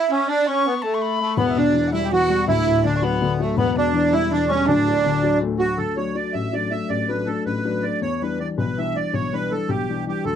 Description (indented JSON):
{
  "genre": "celtic folk, Celtic jig",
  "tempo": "108 BPM (dotted quarters)",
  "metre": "6/8",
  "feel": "straight",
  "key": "D major",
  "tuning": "A4 = 441 Hz",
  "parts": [
    { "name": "accordion", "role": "melody", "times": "0.0-10.4 s", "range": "A3 to E5", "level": "-21 LUFS", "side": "right 3 dB", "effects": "light tremolo tuning" },
    { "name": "clear fiddle", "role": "second line", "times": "0.0-5.4 s", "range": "A3 to F#4", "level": "-28 LUFS", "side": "right 6 dB", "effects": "none" },
    { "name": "mellow mid whistle", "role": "second line", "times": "0.0-5.4 s", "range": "D5 to C#6", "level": "-28 LUFS", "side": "left 6 dB", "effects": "none" },
    { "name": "dark upright piano", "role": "accompaniment", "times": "1.4-10.4 s", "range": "D1 to D4", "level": "-22 LUFS", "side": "left 5 dB", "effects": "none" }
  ],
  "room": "moderate booth ambience, RT60 0.2 s",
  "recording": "dry, close 1970s-style studio recording",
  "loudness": "-19 LUFS",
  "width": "side -9 dB against mid",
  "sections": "0.0-5.8 A section; 5.8-10.4 B section",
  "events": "none",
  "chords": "0.0 N.C.; 1.4 Emadd9; 2.5 Dadd9; 3.6 Em; 4.7 D; 8.0 Em7"
}